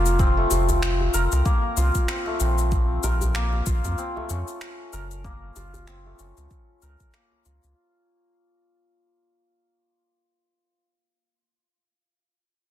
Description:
organic downtempo; 95 BPM; 4/4; swing 57% on 16ths; A4 = 440 Hz
santur; arpeggios; 0.0-11.4 s; A3 to Bb4; -27 LUFS; left 1 dB; low-pass filter, ping-pong delay
warm sub bass; bass; 0.0-7.7 s; F1 to F2; -23 LUFS; equal
electronic cabasa and finger snaps; drums; 0.1-7.7 s; -31 LUFS; left 3 dB; soft clipping on snare
electronic kick drum; drums; 0.2-7.1 s; -23 LUFS; equal
djembe; percussion; 0.5-7.4 s; -33 LUFS; right 1 dB
little or no reverb; dense, heavily limited modern master; -21 LUFS; side -12 dB against mid
0.0-7.8 A section
fade-out 0.0-7.8
0.2 Fsus4; 2.7 Gbmaj7
| 0.19 0.82 1.45 2.09 | 2.72 3.35 3.98 4.61 | 5.24 5.88 6.51 7.14

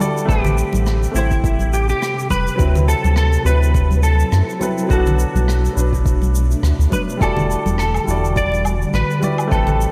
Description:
sunset chillout; 104 BPM; 4/4; swing 56% on 16ths; E minor; A4 = 440 Hz
clean electric guitar; melody; 0.0-9.9 s; E4 to D5; -25 LUFS; equal; ensemble chorus, delay
warm grand piano; accompaniment; 0.0-9.9 s; F#3 to D5; -27 LUFS; equal; delay
ethereal airy pad; sustained chords; 0.0-9.9 s; B2 to F#5; -29 LUFS; equal; ensemble chorus, built-in reverb
shaker, rim click and woodblock; drums; 0.0-9.9 s; -32 LUFS; equal; gated reverb
round analog bass; bass; 0.3-9.9 s; E1 to F#2; -19 LUFS; equal
electronic kick drum; drums; 0.3-9.6 s; -23 LUFS; equal; overdrive
congas; percussion; 0.4-9.8 s; -28 LUFS; equal
light reverb, small room ambience; bright 1980s-style digital production; -17 LUFS; mono
0.0-9.9 A section
0.3 Am9; 2.6 D13; 4.9 Bm7; 7.2 Em9
| 0.28 0.86 1.44 2.02 | 2.59 3.17 3.75 4.32 | 4.90 5.48 6.05 6.63 | 7.21 7.79 8.36 8.94 | 9.52

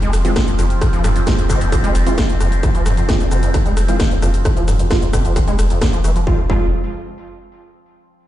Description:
driving peak-time techno; 132 BPM; 4/4; straight; F harmonic minor; A4 = 440 Hz
overdriven acid bass; riff; 0.0-6.7 s; E2 to Ab3; -23 LUFS; equal; ensemble chorus, sidechain pumping, digital delay
overtone-sweeping drone; drone; 0.0-6.3 s; F3 to C4; -26 LUFS; equal; chorus, built-in reverb, sidechain pumping
techno drum kit; drums; 0.0-6.2 s; hi-hat, rim click, shaker, snare drum; -24 LUFS; equal
saturated sub bass; bass; 0.1-6.7 s; F1; -19 LUFS; equal; overdrive, sidechain pumping, low-pass filter
rave stab; stabs; 0.2-6.7 s; Ab3 to F4; -25 LUFS; right 2 dB; chorus, built-in reverb, sidechain pumping, digital delay
electronic kick drum; drums; 0.4-6.6 s; -17 LUFS; equal; distortion
light reverb, digital ambience; played on a big sound system in a bare room, stone room reverb, nothing above 10.8 kHz; -14 LUFS; side -13 dB against mid
0.0-6.3 A section; 6.3-8.1 B section
filter sweep on acid bass 0.0-6.3; filter sweep on synth stab 0.0-6.3
0.0 Fm
0.36 | 0.81 1.27 1.72 2.18 | 2.63 3.09 3.54 4.00 | 4.45 4.91 5.36 5.82 | 6.27

